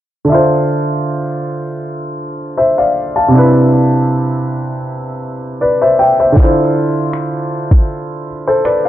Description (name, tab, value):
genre	contemporary R&B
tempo	79 BPM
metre	4/4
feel	swing 54% on 16ths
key	D dorian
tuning	A4 = 440 Hz
part	warm concert grand piano	accompaniment	0.2-8.9 s	C3 to A5	-12 LUFS	equal	none
part	smooth R&B drum kit	drums	6.4-8.8 s	finger snaps, kick drum	-10 LUFS	equal	none
room	small room ambience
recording	dry, gritty hardware recording, cassette tape, low-pass filter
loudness	-11 LUFS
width	side -12 dB against mid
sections	0.3-8.9 A section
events	filter sweep 0.3-8.9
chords	0.3 Dm9; 3.3 Cmaj7; 6.4 Dm9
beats	| 0.29 1.05 1.81 2.57 | 3.33 4.09 4.85 5.61 | 6.37 7.13 7.89 8.65